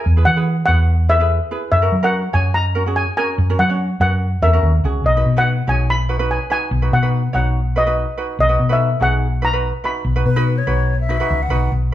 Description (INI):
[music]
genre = calypso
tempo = 144 BPM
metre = 4/4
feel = straight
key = B major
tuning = A4 = 441 Hz
[part]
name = steel pan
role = melody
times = 0.0-11.5 s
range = D#5 to B5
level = -19 LUFS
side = left 1 dB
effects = none
[part]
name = ukulele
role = accompaniment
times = 0.0-11.7 s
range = C#4 to C#5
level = -24 LUFS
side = right 3 dB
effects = none
[part]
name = hollow-body short-scale fingered electric bass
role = bass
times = 0.1-11.9 s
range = B1 to F#3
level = -17 LUFS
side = equal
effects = none
[part]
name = wooden flute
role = second line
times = 10.3-11.7 s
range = B4 to F#5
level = -23 LUFS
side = left 5 dB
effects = none
[sound]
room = moderate large studio reverb, RT60 0.9 s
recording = band playing live in one room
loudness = -15 LUFS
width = side -13 dB against mid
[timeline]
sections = 0.0-11.7 A section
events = none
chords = 0.0 Eadd9; 1.7 F#add9; 5.0 B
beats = | 0.06 0.47 0.89 1.31 | 1.72 2.14 2.55 2.97 | 3.38 3.80 4.22 4.63 | 5.05 5.47 5.88 6.30 | 6.72 7.13 7.55 7.97 | 8.38 8.80 9.22 9.64 | 10.05 10.47 10.89 11.31 | 11.72